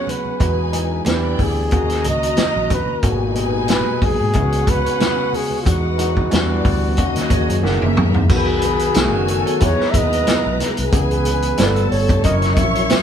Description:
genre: lush 1970s-style soul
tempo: 91 BPM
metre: 4/4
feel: swing 54% on 16ths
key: unclear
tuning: A4 = 440 Hz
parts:
  - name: breathy flugelhorn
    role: melody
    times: 0.0-13.0 s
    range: E#4 to E5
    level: -23 LUFS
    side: right 1 dB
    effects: none
  - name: warm studio string section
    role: second line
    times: 0.0-13.0 s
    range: G3 to C#6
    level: -24 LUFS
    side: left 1 dB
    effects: none
  - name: overdriven tine electric piano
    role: accompaniment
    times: 0.0-13.0 s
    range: A#2 to A#4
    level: -23 LUFS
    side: left 2 dB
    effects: none
  - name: electric guitar through a small old amp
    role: riff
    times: 0.0-0.4, 7.3-10.7 s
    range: A3 to C#5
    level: -27 LUFS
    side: right 4 dB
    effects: none
  - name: vintage drum kit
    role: drums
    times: 0.1-13.0 s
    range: crash cymbal, hi-hat, kick drum, snare drum, toms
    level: -20 LUFS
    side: equal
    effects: none
  - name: congas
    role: percussion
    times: 0.1-13.0 s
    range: none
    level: -30 LUFS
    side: right 3 dB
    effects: none
  - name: vintage muted fingered electric bass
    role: bass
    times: 0.4-12.9 s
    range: F#1 to D#3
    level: -22 LUFS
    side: equal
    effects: none
  - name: mellow tonewheel organ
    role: sustained chords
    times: 8.3-13.0 s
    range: C#3 to G#4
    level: -28 LUFS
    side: equal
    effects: none
room: moderate studio reverb, RT60 0.9 s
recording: band playing live in one room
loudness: -15 LUFS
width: side -8 dB against mid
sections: 0.0-8.3 A section; 8.3-13.0 B section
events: drum fill 7.6-8.3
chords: 0.4 Emaj9; 1.1 Em7; 1.7 D#m7; 3.0 G#m9; 4.4 C#7sus4; 5.7 Emaj9; 6.3 Em7; 7.0 D#m7; 7.6 F#13; 8.3 B; 9.0 B7; 9.6 Emaj7; 10.9 C#m7; 11.6 G9; 12.2 F#7

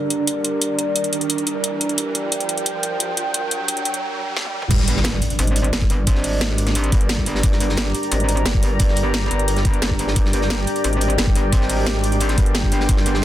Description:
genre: dark technical drum and bass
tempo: 176 BPM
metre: 4/4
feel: straight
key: G phrygian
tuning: A4 = 440 Hz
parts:
  - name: dark analog pad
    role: sustained chords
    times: 0.0-13.2 s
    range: G3 to G5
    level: -25 LUFS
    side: right 1 dB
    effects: chorus, phaser, sidechain pumping
  - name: riser and impact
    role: sound effects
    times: 0.0-6.1 s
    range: none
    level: -28 LUFS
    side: right 1 dB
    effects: none
  - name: deep dark ambient pad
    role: texture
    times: 0.0-13.2 s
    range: G4 to C6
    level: -28 LUFS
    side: left 1 dB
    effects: chorus, built-in reverb, sidechain pumping
  - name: drum and bass drum kit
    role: drums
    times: 0.1-13.1 s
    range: crash cymbal, hi-hat, snare drum, toms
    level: -23 LUFS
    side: equal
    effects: soft clipping on snare
  - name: metallic wobble bass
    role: bass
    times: 4.7-13.2 s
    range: G1 to Ab1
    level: -21 LUFS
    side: equal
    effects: chorus, overdrive
  - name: crunchy breakbeat drum kit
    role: drums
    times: 4.7-13.2 s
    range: hi-hat, snare drum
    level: -30 LUFS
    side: equal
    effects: high-pass filter on hats, high-pass filter on snare, high-pass filter on room
  - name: electronic kick drum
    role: drums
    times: 4.7-13.0 s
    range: none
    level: -18 LUFS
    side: equal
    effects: none
room: light reverb, digital ambience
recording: dense, heavily limited modern master, high-pass filter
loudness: -17 LUFS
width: side -13 dB against mid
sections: 0.0-4.7 A section; 4.7-13.2 B section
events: build-up 0.0-4.7; riser 0.0-4.7; break 4.0-4.7; drum fill 4.4-4.7; drop 4.7-13.2; impact 4.7-6.1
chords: 0.0 Gm

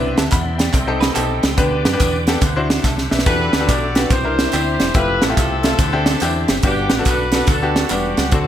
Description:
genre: uptempo gospel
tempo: 142 BPM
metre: 4/4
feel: swing 66% on 8ths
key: G major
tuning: A4 = 440 Hz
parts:
  - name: bright concert grand piano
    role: accompaniment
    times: 0.0-8.5 s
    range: G2 to B5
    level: -21 LUFS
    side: left 2 dB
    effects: none
  - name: bright tonewheel organ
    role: sustained chords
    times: 0.0-8.5 s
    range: B3 to E6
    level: -29 LUFS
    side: right 2 dB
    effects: fast rotary speaker, chorus vibrato
  - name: fingered electric bass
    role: bass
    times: 0.0-8.5 s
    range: E1 to F#2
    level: -23 LUFS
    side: equal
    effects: none
  - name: crisp fusion drum kit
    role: drums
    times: 0.2-8.4 s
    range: hi-hat, kick drum, snare drum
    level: -18 LUFS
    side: right 1 dB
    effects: gated reverb
  - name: tambourine and handclaps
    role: percussion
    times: 0.2-8.4 s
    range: none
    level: -30 LUFS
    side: right 1 dB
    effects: none
  - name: clean electric guitar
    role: second line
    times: 1.0-1.8 s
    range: G4 to B4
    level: -28 LUFS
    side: right 5 dB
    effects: analog chorus, ping-pong delay
  - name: warm horn section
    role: melody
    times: 3.3-8.5 s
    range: A3 to D5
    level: -21 LUFS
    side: left 1 dB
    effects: ping-pong delay
room: moderate plate reverb, RT60 1.1 s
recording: bright 1980s-style digital production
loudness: -14 LUFS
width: side -10 dB against mid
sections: 0.0-8.5 A section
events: drum fill 2.8-3.3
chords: 0.0 Cmaj9; 0.7 Cm6; 1.6 G/D; 2.4 D9; 3.3 Em11; 4.1 C9; 4.9 Fmaj9; 5.8 D9sus4; 6.6 Gmaj7

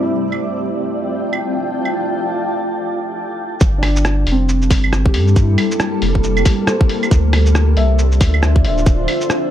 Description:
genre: future garage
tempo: 137 BPM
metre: 4/4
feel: swing 60% on 16ths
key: G dorian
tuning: A4 = 440 Hz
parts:
  - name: felt-muted upright piano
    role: accompaniment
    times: 0.0-9.5 s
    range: C4 to E5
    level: -24 LUFS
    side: equal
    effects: sidechain pumping, tape echo
  - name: granular cloud pad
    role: sustained chords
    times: 0.0-9.5 s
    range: G3 to A5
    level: -20 LUFS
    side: equal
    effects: built-in reverb, sidechain pumping
  - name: drifting glass-harmonics texture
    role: texture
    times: 0.0-2.7 s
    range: A3 to A5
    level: -31 LUFS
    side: right 3 dB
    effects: chorus, built-in reverb
  - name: lo-fi sampler-style drum kit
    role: drums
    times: 0.3-9.4 s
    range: claves, hi-hat, rim click, shaker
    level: -21 LUFS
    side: right 1 dB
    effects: studio ambience
  - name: warm sub bass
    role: bass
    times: 3.6-9.1 s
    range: D1 to G2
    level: -14 LUFS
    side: equal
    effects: sidechain pumping
  - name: electronic kick drum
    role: drums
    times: 3.6-9.0 s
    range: none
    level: -13 LUFS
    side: equal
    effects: studio ambience
room: little or no reverb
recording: dark, warm production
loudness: -14 LUFS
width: side -11 dB against mid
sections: 0.0-3.6 A section; 3.6-9.5 B section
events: break 2.7-3.6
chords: 0.1 F69; 3.6 Gm9; 7.1 Dm11

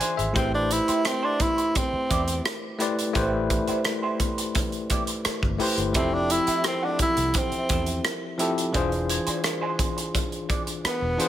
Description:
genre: lush 1970s-style soul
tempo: 86 BPM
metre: 4/4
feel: straight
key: A minor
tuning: A4 = 439 Hz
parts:
  - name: bell-like tine electric piano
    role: accompaniment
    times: 0.0-11.3 s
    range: E3 to C6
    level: -28 LUFS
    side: left 2 dB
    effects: medium stereo tremolo
  - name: electric guitar through a small old amp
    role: riff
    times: 0.0-11.3 s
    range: A3 to D5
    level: -33 LUFS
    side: right 4 dB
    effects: wah, spring reverb
  - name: modern studio drum kit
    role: drums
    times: 0.0-11.3 s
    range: hi-hat, kick drum, rim click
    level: -27 LUFS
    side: equal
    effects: none
  - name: vintage muted fingered electric bass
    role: bass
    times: 0.2-11.2 s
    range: E1 to E2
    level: -30 LUFS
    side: equal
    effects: none
  - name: breathy tenor saxophone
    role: melody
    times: 0.4-11.3 s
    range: B3 to E4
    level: -25 LUFS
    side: right 1 dB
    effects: none
  - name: celesta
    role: texture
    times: 6.0-11.3 s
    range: A4 to G#6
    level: -39 LUFS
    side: right 3 dB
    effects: none
room: light reverb, small room ambience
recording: none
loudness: -22 LUFS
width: side -12 dB against mid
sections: 0.0-11.3 A section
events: none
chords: 0.4 Am7; 6.0 Fmaj9; 8.7 E7b9b13

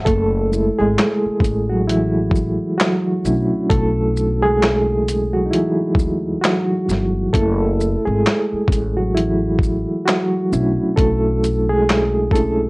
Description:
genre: lo-fi hip hop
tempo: 66 BPM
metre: 4/4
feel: swing 61% on 16ths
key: F# minor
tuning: A4 = 440 Hz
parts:
  - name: reed electric piano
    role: accompaniment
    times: 0.0-12.7 s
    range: E3 to A4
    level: -17 LUFS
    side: equal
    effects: fast tremolo, cassette tape
  - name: upright bass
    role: bass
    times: 0.1-12.7 s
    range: F#1 to D2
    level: -22 LUFS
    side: equal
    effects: none
  - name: dusty soul sampler-style drum kit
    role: drums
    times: 0.1-12.6 s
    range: handclaps, hi-hat, kick drum, shaker, snare drum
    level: -19 LUFS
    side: equal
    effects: none
room: moderate studio reverb, RT60 0.6 s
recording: worn, warbling old tape, cassette tape, warbly pitch drift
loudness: -15 LUFS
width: side -26 dB against mid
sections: 0.1-12.7 A section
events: reed electric piano solo 0.1-12.7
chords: 0.1 F#m9; 3.2 Bm11; 7.3 F#m9; 10.5 Bm11

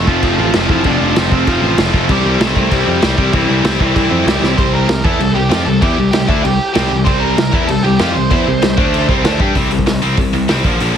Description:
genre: punk rock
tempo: 193 BPM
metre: 4/4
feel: straight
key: C major, C mixolydian from 4.6 s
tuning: A4 = 439 Hz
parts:
  - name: smooth overdriven lead guitar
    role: melody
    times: 0.0-9.4 s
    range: E3 to C6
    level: -19 LUFS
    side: right 3 dB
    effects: none
  - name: distorted electric guitar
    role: riff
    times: 0.0-9.6 s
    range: F2 to G4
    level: -21 LUFS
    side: left 1 dB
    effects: distortion
  - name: tight distorted guitar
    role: riff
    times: 0.0-11.0 s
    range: F2 to G4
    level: -19 LUFS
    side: left 15 dB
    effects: distortion
  - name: tight distorted guitar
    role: riff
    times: 0.0-11.0 s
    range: Bb2 to G4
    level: -20 LUFS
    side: right 11 dB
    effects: distortion
  - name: modern bright picked electric bass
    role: bass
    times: 0.0-10.9 s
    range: F1 to G2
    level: -18 LUFS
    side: equal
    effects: none
  - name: raw garage drum kit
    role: drums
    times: 0.1-11.0 s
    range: crash cymbal, hi-hat, kick drum, snare drum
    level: -17 LUFS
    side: equal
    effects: none
room: little or no reverb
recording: heavily compressed radio sound, multiband compression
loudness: -11 LUFS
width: side -8 dB against mid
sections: 0.0-4.6 A section; 4.6-9.6 B section; 9.6-11.0 C section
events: drum fill 4.4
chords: 0.0 F; 2.1 C; 8.8 D5; 9.1 C5

